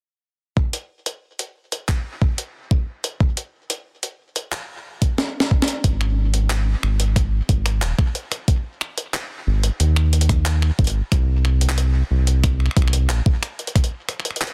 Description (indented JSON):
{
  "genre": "IDM",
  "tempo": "91 BPM",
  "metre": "4/4",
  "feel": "straight",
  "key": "unclear",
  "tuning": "A4 = 438 Hz",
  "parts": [
    { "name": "electronic kick drum", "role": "drums", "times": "0.6-13.9 s", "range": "none", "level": "-20 LUFS", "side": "equal", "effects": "none" },
    { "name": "jungle sampler-style drum kit", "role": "drums", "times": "0.7-14.5 s", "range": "finger snaps, handclaps, hi-hat, snare drum", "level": "-27 LUFS", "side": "equal", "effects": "soft clipping on snare" },
    { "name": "round analog bass", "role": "bass", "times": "5.8-13.2 s", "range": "Eb1 to Eb2", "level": "-20 LUFS", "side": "equal", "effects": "none" }
  ],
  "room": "little or no reverb",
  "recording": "dense, heavily limited modern master",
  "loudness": "-21 LUFS",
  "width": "mono",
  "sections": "0.6-5.8 A section; 5.8-14.5 B section",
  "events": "drum fill 5.2-5.8",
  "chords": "none",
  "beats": "| 0.57 1.23 1.89 2.55 | 3.21 3.87 4.53 5.18 | 5.84 6.50 7.16 7.82 | 8.48 9.14 9.80 10.46 | 11.12 11.78 12.44 13.10 | 13.76 14.41"
}